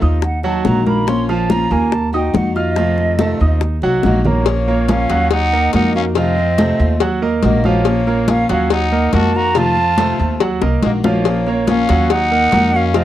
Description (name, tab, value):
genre	latin, Cuban son and guajira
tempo	141 BPM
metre	4/4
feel	straight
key	unclear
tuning	A4 = 440 Hz
part	picked steel-string acoustic guitar	accompaniment	0.0-13.0 s	C3 to Gb4	-21 LUFS	left 5 dB	none
part	clear concert grand piano	arpeggios	0.0-13.0 s	F3 to F6	-19 LUFS	right 4 dB	none
part	upright bass	bass	0.0-13.0 s	Bb1 to F2	-18 LUFS	equal	none
part	congas	percussion	0.0-13.0 s	none	-20 LUFS	left 1 dB	none
part	hollow concert flute	melody	0.2-13.0 s	Db5 to C6	-19 LUFS	right 2 dB	slapback echo
part	bongos and cowbell	percussion	0.2-13.0 s	none	-20 LUFS	left 10 dB	none
part	growling trumpet	second line	4.0-13.0 s	Bb3 to Gb4	-24 LUFS	left 8 dB	none
room	light reverb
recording	dry, close 1970s-style studio recording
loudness	-13 LUFS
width	side -13 dB against mid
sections	0.0-4.5 A section; 4.5-13.0 B section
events	flute solo 0.0-4.5; drum fill 4.0-4.5, 10.6-11.3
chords	0.2 Ebm; 1.1 Bbm; 1.9 Ebm; 2.8 F7; 3.6 Ebm; 4.5 Bbm; 5.3 Ebm; 6.2 F7; 7.0 Ebm; 7.9 Bbm; 8.7 Ebm; 9.6 F7; 10.4 Ebm; 11.3 Bbm; 12.1 Ebm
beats	0.23 0.65 | 1.08 1.50 1.92 2.35 | 2.77 3.19 3.62 4.04 | 4.46 4.89 5.31 5.74 | 6.16 6.58 7.01 7.43 | 7.86 8.28 8.71 9.13 | 9.56 9.98 10.41 10.83 | 11.26 11.68 12.11 12.53 | 12.96